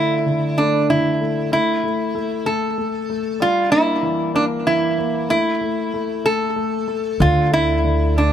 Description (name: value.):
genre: pop.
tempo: 63 BPM (dotted quarters).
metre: 6/8.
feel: straight.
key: D minor.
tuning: A4 = 441 Hz.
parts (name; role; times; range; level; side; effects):
lap resonator guitar; melody; 0.0-8.3 s; D4 to A4; -19 LUFS; right 2 dB; digital delay.
warm concert grand piano; accompaniment; 0.0-8.3 s; D3 to Bb3; -22 LUFS; left 3 dB; none.
upright bass; bass; 7.2-8.3 s; D2; -18 LUFS; right 1 dB; none.
room: light reverb, small room ambience.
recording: none.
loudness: -17 LUFS.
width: side -9 dB against mid.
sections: 0.0-8.3 A section.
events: none.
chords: 0.0 Dsus2; 1.5 N.C.; 3.4 Edim; 5.3 N.C.; 7.2 Dm.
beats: 0.56 | 1.51 2.45 | 3.40 4.35 | 5.29 6.25 | 7.21 8.17.